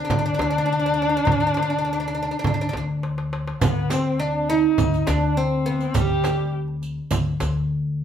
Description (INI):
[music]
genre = Turkish makam ensemble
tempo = 103 BPM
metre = 4/4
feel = straight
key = D makam hicaz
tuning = A4 = 442 Hz
[part]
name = oud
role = melody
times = 0.0-6.5 s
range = G3 to Eb4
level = -25 LUFS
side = right 3 dB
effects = none
[part]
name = dark kamancheh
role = second line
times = 0.0-6.5 s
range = B3-42c to G4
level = -25 LUFS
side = left 2 dB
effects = none
[part]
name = upright bass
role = bass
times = 0.1-8.0 s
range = D2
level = -25 LUFS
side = left 2 dB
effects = none
[part]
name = darbuka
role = percussion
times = 0.1-7.6 s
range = none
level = -29 LUFS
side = equal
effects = none
[part]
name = frame drum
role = percussion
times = 0.1-7.5 s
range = none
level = -26 LUFS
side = right 3 dB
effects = none
[part]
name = riq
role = percussion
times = 3.6-7.5 s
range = none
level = -36 LUFS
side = right 4 dB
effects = none
[sound]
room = wet studio reverb, RT60 0.7 s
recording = band playing live in one room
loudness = -20 LUFS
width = side -9 dB against mid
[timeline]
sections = 0.0-3.6 A section; 3.6-8.0 A section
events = drum fill 3.0-3.6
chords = none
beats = 0.10 0.68 | 1.27 1.85 2.44 3.03 | 3.61 4.20 4.78 5.37 | 5.95 6.53 7.12 7.70